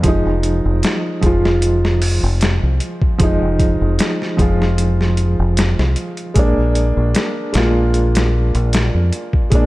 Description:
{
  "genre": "trip hop",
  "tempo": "76 BPM",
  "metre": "4/4",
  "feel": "swing 54% on 16ths",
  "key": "F dorian",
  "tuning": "A4 = 440 Hz",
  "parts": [
    { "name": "felt-muted upright piano", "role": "accompaniment", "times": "0.0-9.7 s", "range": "F3 to F4", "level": "-19 LUFS", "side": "right 1 dB", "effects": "tremolo, tape echo" },
    { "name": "deep dub fingered electric bass", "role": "bass", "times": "0.0-9.7 s", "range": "F1 to F2", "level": "-16 LUFS", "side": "equal", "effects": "tube saturation" },
    { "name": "boom bap sampler-style drum kit", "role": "drums", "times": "0.0-9.7 s", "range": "hi-hat, kick drum, snare drum", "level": "-19 LUFS", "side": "equal", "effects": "studio reverb" }
  ],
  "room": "light reverb, digital ambience",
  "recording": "dark, warm production",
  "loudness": "-14 LUFS",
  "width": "side -18 dB against mid",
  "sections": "0.0-9.7 A section",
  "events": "none",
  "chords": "0.0 Fm7; 6.4 Bb7",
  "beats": "| 0.04 0.83 1.62 2.41 | 3.20 3.99 4.78 5.57 | 6.36 7.15 7.94 8.73 | 9.52"
}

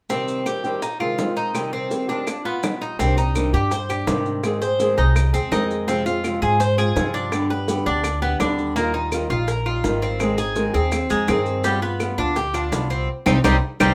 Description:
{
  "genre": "latin, Cuban son and guajira",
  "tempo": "166 BPM",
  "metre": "4/4",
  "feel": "straight",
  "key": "C minor",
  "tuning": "A4 = 440 Hz",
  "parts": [
    { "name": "flamenco guitar", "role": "accompaniment", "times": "0.1-13.9 s", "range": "C3 to Ab4", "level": "-27 LUFS", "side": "equal", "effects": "none" },
    { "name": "Cuban tres", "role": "arpeggios", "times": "0.1-13.9 s", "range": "G3 to C5", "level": "-26 LUFS", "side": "equal", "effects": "none" },
    { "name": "bongos", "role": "percussion", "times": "0.1-13.9 s", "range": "none", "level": "-30 LUFS", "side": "equal", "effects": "none" },
    { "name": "maracas", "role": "percussion", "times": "0.1-13.9 s", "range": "none", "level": "-40 LUFS", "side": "equal", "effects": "none" },
    { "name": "claves", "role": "percussion", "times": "0.5-13.9 s", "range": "none", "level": "-33 LUFS", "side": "equal", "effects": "none" },
    { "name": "upright bass", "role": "bass", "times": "3.0-13.9 s", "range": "Ab1 to Ab2", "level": "-26 LUFS", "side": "equal", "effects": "none" }
  ],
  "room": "moderate studio reverb, RT60 0.6 s",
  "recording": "none",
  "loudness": "-21 LUFS",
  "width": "mono",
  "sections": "0.1-3.0 A section; 3.0-13.9 B section",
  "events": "band accent 13.1-13.9; drum fill 13.6-13.9",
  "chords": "0.1 Cm; 0.8 Fm7; 1.5 Cm; 2.3 G7; 3.0 Cmadd9; 4.4 Ab; 5.9 Fm; 7.3 G; 8.8 Ebadd9; 10.2 Ab; 11.6 G7; 13.1 Cm",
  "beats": "| 0.10 0.46 0.82 1.18 | 1.55 1.91 2.27 2.63 | 2.99 3.35 3.72 4.08 | 4.44 4.80 5.16 5.52 | 5.88 6.24 6.60 6.96 | 7.32 7.68 8.04 8.40 | 8.76 9.12 9.48 9.84 | 10.20 10.56 10.92 11.28 | 11.64 12.01 12.37 12.72 | 13.09 13.45 13.80"
}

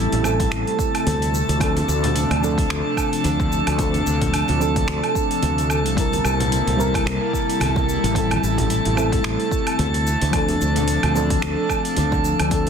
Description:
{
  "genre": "sunset chillout",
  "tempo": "110 BPM",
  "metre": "4/4",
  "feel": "swing 57% on 16ths",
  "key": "unclear",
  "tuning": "A4 = 440 Hz",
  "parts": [
    { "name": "mellow FM electric piano", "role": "accompaniment", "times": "0.0-12.7 s", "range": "F3 to Bb4", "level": "-24 LUFS", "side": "left 2 dB", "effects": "chorus, auto-pan, ping-pong delay" },
    { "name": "airy breathy pad", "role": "sustained chords", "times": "0.0-12.7 s", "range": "C3 to E4", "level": "-27 LUFS", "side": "left 1 dB", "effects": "chorus" },
    { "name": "fretless electric bass", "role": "bass", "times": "0.0-12.7 s", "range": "A1 to D2", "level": "-23 LUFS", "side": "right 1 dB", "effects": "none" },
    { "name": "drifting glass-harmonics texture", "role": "texture", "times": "0.0-12.7 s", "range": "A4 to A5", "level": "-26 LUFS", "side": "right 3 dB", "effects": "chorus, built-in reverb" },
    { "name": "deep house drum kit", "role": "drums", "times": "0.1-12.7 s", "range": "finger snaps, hi-hat, shaker, woodblock", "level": "-27 LUFS", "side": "right 2 dB", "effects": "overdrive, soft clipping on snare" },
    { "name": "congas", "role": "percussion", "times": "0.1-12.2 s", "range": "none", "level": "-30 LUFS", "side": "left 2 dB", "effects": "none" },
    { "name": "electronic kick drum", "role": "drums", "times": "0.4-12.6 s", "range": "none", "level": "-25 LUFS", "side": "right 1 dB", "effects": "overdrive" }
  ],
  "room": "light reverb",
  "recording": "dense, heavily limited modern master",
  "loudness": "-18 LUFS",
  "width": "side -7 dB against mid",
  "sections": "0.0-12.7 A section",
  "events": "none",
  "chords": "0.0 Am7; 1.3 Dm7; 6.0 C7; 8.2 Am7; 10.1 Dm7",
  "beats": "0.52 1.06 | 1.61 2.15 2.70 3.24 | 3.79 4.33 4.88 5.43 | 5.97 6.52 7.06 7.61 | 8.15 8.70 9.24 9.79 | 10.34 10.88 11.43 11.97 | 12.52"
}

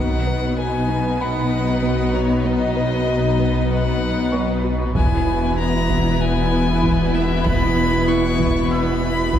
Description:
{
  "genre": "cinematic, hybrid orchestral and electronic film score",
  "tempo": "96 BPM",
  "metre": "4/4",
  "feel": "straight",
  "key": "unclear",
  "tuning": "A4 = 443 Hz",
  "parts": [
    { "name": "rich violin", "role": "melody", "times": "0.0-9.4 s", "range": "Db5 to Db6", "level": "-26 LUFS", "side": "left 4 dB", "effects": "none" },
    { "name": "warm symphonic violin section", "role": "melody", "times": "0.0-9.4 s", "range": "B4", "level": "-32 LUFS", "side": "left 3 dB", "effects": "none" },
    { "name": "rich symphonic violin section", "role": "second line", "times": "0.0-9.4 s", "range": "D#4 to E4", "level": "-28 LUFS", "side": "left 1 dB", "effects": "none" },
    { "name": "rich symphonic viola section", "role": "accompaniment", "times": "0.0-9.4 s", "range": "B3", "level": "-26 LUFS", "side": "left 1 dB", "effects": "none" },
    { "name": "dark French horn section", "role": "sustained chords", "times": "0.0-9.4 s", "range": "B3 to E4", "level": "-26 LUFS", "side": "left 1 dB", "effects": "none" },
    { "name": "warm trombone section", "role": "sustained chords", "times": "0.0-9.4 s", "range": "B2 to F#3", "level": "-29 LUFS", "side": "right 2 dB", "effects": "none" },
    { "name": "soft round pluck", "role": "arpeggios", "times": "0.0-9.4 s", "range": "E3 to B4", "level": "-30 LUFS", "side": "right 3 dB", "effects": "none" },
    { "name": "clear symphonic cello section", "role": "bass", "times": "0.0-9.4 s", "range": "E2 to B2", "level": "-25 LUFS", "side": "equal", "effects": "none" },
    { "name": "punchy sub bass", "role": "bass", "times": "0.0-9.4 s", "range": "E1 to B1", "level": "-26 LUFS", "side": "equal", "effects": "none" },
    { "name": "rich symphonic double bass section", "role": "bass", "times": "0.0-9.4 s", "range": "E1 to B1", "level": "-26 LUFS", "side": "right 2 dB", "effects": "none" },
    { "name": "felt-muted upright piano", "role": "texture", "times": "0.0-9.4 s", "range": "B4 to E6", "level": "-34 LUFS", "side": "equal", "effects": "tape echo" },
    { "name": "taiko ensemble", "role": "drums", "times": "5.0-9.4 s", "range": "none", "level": "-25 LUFS", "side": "equal", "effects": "none" }
  ],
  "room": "wet scoring stage reverb, RT60 1.9 s",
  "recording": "heard from further back in the room",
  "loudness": "-17 LUFS",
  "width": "side -10 dB against mid",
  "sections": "0.0-9.4 A section",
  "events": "none",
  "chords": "0.0 B; 5.0 E",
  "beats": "0.59 1.21 1.84 | 2.46 3.09 3.71 4.34 | 4.96 5.59 6.21 6.84 | 7.46 8.09 8.71 9.34"
}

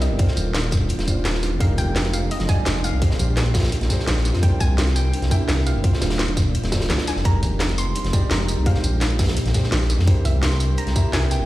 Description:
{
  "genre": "liquid drum and bass",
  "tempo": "170 BPM",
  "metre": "4/4",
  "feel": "straight",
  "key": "F dorian",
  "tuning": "A4 = 440 Hz",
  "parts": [
    { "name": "soft round pluck", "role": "melody", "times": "0.0-11.5 s", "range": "Eb5 to C6", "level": "-32 LUFS", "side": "equal", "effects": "chorus, digital delay" },
    { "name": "clear grand piano", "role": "accompaniment", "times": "0.0-11.5 s", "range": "D3 to E5", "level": "-30 LUFS", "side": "equal", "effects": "none" },
    { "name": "shimmering ambient pad", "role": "sustained chords", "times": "0.0-11.5 s", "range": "D3 to G4", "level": "-31 LUFS", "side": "right 2 dB", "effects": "chorus, built-in reverb" },
    { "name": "dark detuned saw bass", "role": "bass", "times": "0.0-11.5 s", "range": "Eb1 to F2", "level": "-21 LUFS", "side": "equal", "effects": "none" },
    { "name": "crunchy breakbeat drum kit", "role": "drums", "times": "0.0-11.4 s", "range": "hi-hat, snare drum", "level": "-31 LUFS", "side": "equal", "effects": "high-pass filter on hats, high-pass filter on snare, high-pass filter on room" },
    { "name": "drum and bass drum kit", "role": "drums", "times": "0.0-11.4 s", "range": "hi-hat, snare drum, tambourine", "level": "-27 LUFS", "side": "equal", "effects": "none" },
    { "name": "electronic kick drum", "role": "drums", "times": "0.2-11.0 s", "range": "none", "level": "-19 LUFS", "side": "equal", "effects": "none" }
  ],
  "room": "little or no reverb",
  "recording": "played on a big sound system in a bare room, large studio reverb",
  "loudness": "-18 LUFS",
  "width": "side -16 dB against mid",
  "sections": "0.0-11.5 A section",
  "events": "none",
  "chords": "0.2 Ebmaj13; 1.6 Fm11; 3.0 Bb13; 4.4 C7; 5.8 Ebmaj13; 7.3 Fm11; 8.7 Bb13; 10.1 C7",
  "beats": "| 0.19 0.55 0.90 1.25 | 1.60 1.96 2.31 2.66 | 3.02 3.37 3.72 4.08 | 4.43 4.78 5.13 5.49 | 5.84 6.19 6.55 6.90 | 7.25 7.61 7.96 8.31 | 8.66 9.02 9.37 9.72 | 10.08 10.43 10.78 11.13"
}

